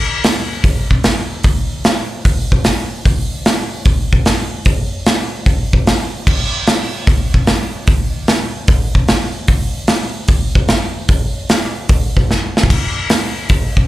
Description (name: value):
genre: rock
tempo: 149 BPM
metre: 4/4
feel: swing 67% on 8ths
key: none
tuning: none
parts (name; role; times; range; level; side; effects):
- big rock drum kit; drums; 0.2-13.8 s; crash cymbal, hi-hat, kick drum, snare drum; -13 LUFS; equal; none
room: light reverb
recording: live gig heard through the venue's PA, club reverb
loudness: -13 LUFS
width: side -16 dB against mid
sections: 0.0-13.9 A section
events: drum fill 12.3-12.7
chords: none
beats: 0.24 0.64 1.05 | 1.45 1.85 2.25 2.66 | 3.06 3.46 3.87 4.27 | 4.67 5.07 5.47 5.88 | 6.28 6.68 7.08 7.49 | 7.89 8.29 8.69 9.09 | 9.49 9.89 10.30 10.70 | 11.10 11.50 11.90 12.30 | 12.70 13.10 13.51